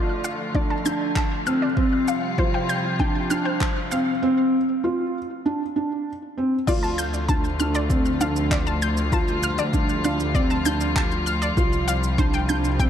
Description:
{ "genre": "piano and strings electronica", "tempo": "98 BPM", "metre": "4/4", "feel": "straight", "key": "D minor", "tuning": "A4 = 440 Hz", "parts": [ { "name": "dark studio string section", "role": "sustained chords", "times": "0.0-12.9 s", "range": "C3 to F4", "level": "-28 LUFS", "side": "left 1 dB", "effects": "none" }, { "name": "felt-muted upright piano", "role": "riff", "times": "0.0-12.9 s", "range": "C4 to F4", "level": "-24 LUFS", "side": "right 1 dB", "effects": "digital delay" }, { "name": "analog pluck", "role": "arpeggios", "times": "0.2-12.8 s", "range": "C5 to G6", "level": "-28 LUFS", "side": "left 2 dB", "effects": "chorus, cassette tape, sidechain pumping, digital delay" }, { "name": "deep house drum kit", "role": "drums", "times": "0.2-12.9 s", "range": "crash cymbal, handclaps, shaker", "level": "-33 LUFS", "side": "right 2 dB", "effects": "overdrive" }, { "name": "electronic kick drum", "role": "drums", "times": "0.5-12.9 s", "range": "none", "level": "-24 LUFS", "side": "equal", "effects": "overdrive" }, { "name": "rich studio double bass section", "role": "bass", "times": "6.7-12.9 s", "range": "C2 to D2", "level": "-26 LUFS", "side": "equal", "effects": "sidechain pumping" } ], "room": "moderate lush hall reverb, RT60 2.7 s", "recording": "dark, warm production", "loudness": "-20 LUFS", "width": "side -9 dB against mid", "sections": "0.0-6.7 A section; 6.7-12.9 B section", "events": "build-up 0.0-6.7; drop 6.7-12.9", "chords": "0.0 Dm; 1.8 Csus4; 6.7 Dm; 11.6 Csus4" }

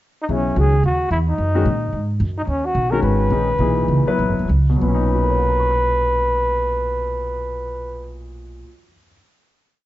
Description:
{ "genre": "modal jazz", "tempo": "186-220 BPM", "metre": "4/4", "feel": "swing 61% on 8ths", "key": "B major", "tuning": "A4 = 437 Hz", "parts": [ { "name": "breathy trumpet", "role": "melody", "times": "0.2-8.1 s", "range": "C#4 to B4", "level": "-21 LUFS", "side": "equal", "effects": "none" }, { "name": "warm baby grand piano", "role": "accompaniment", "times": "0.3-9.1 s", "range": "A#2 to F#6", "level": "-23 LUFS", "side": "left 3 dB", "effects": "none" }, { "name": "upright bass", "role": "bass", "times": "0.3-8.6 s", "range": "D#1 to A#2", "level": "-20 LUFS", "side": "right 1 dB", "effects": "none" } ], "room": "little or no reverb", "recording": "dark, warm production, nothing above 7.8 kHz", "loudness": "-17 LUFS", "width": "side -15 dB against mid", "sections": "0.0-0.3 pickup bar; 0.3-4.8 A section; 4.8-7.4 final chord", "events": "slowing down 2.5-4.8", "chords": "0.3 Bmaj9" }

